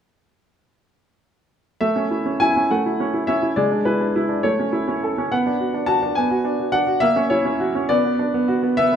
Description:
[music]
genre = classical-period piano sonatina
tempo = 69 BPM (dotted quarters)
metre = 6/8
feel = rubato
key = A major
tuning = A4 = 441 Hz
[part]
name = clear baby grand piano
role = solo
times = 1.8-9.0 s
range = G#3 to A5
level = -18 LUFS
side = equal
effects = none
[sound]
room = wet recital hall reverb, RT60 1.3 s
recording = dark, warm production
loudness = -18 LUFS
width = side -8 dB against mid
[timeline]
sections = 1.8-9.0 A section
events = none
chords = 1.8 A; 3.6 E7/G#; 4.4 A; 5.3 Bm; 7.0 F#7/A#; 7.9 Bm

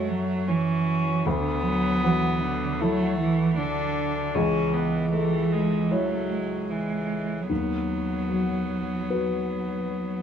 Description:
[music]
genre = neoclassical piano and strings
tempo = 77 BPM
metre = 4/4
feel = rubato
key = unclear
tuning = A4 = 440 Hz
[part]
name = dark cello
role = second line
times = 0.0-10.2 s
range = D3 to A3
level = -26 LUFS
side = right 4 dB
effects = none
[part]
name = dark upright piano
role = accompaniment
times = 0.0-10.2 s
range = C#2 to C#5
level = -28 LUFS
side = left 4 dB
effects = none
[part]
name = warm viola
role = accompaniment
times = 0.0-10.2 s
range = E3 to D4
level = -30 LUFS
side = equal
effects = none
[sound]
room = light reverb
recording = none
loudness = -23 LUFS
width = side -8 dB against mid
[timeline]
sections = 0.0-10.2 A section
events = none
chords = 0.0 F#m; 1.3 Dadd9; 4.3 A/C#; 7.5 B/D#

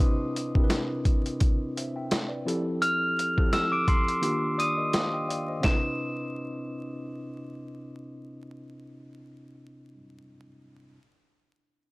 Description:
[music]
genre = hip hop, boom-bap hip-hop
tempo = 85 BPM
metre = 4/4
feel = swing 57% on 16ths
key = C major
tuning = A4 = 440 Hz
[part]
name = mellow tine electric piano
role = accompaniment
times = 0.0-11.0 s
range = C3 to G5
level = -32 LUFS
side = equal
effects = medium stereo tremolo, cassette tape, high-pass filter, low-pass filter
[part]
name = boom bap sampler-style drum kit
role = drums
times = 0.4-5.8 s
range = handclaps, hi-hat, kick drum, snare drum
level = -25 LUFS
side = equal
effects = none
[part]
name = glockenspiel with rubber mallets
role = melody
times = 2.8-7.7 s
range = C6 to F7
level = -28 LUFS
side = equal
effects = high-pass filter, low-pass filter, analog delay
[sound]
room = little or no reverb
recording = dry, gritty hardware recording, vinyl crackle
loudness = -25 LUFS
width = side -24 dB against mid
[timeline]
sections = 0.0-5.6 A section; 5.6-8.5 B section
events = break 0.0-2.8, 4.2-5.6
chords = 0.0 Cmaj9; 2.5 Fmaj9; 4.2 Ebmaj9; 5.6 Cmaj9

